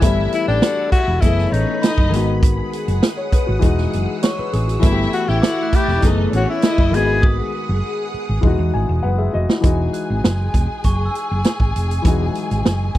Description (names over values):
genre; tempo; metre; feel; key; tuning
lush 1970s-style soul; 100 BPM; 4/4; straight; unclear; A4 = 441 Hz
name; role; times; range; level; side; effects
dark studio string section; second line; 0.0-13.0 s; C#4 to G#5; -26 LUFS; left 1 dB; none
dark baby grand piano; accompaniment; 0.0-13.0 s; D#3 to G#5; -23 LUFS; left 4 dB; none
soft string machine; sustained chords; 0.0-9.6 s; A3 to E6; -29 LUFS; right 1 dB; ensemble chorus
hollow-body short-scale fingered electric bass; bass; 0.0-13.0 s; E1 to E2; -19 LUFS; right 1 dB; none
vintage drum kit; drums; 0.0-13.0 s; hi-hat, kick drum, snare drum; -17 LUFS; right 1 dB; none
glockenspiel with soft plastic mallets; texture; 0.0-11.8 s; G#5 to A6; -33 LUFS; right 2 dB; none
breathy tenor saxophone; melody; 0.3-7.2 s; D4 to G#4; -20 LUFS; left 3 dB; slapback echo
room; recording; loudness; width
little or no reverb; dry, close 1970s-style studio recording; -15 LUFS; side -14 dB against mid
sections
0.0-9.6 A section; 9.6-13.0 B section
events
drum fill 7.2-9.6; grand piano fill 8.4-9.6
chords
0.0 G69; 1.2 F#m11; 2.1 G#m7; 3.6 Emaj9; 4.8 G69; 6.0 F#m11; 6.9 G#m7; 8.4 Emaj9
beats
| 0.03 0.62 1.23 1.83 | 2.43 3.03 3.63 4.23 | 4.83 5.43 6.03 6.63 | 7.23 7.83 8.44 9.04 | 9.64 10.24 10.84 11.44 | 12.04 12.65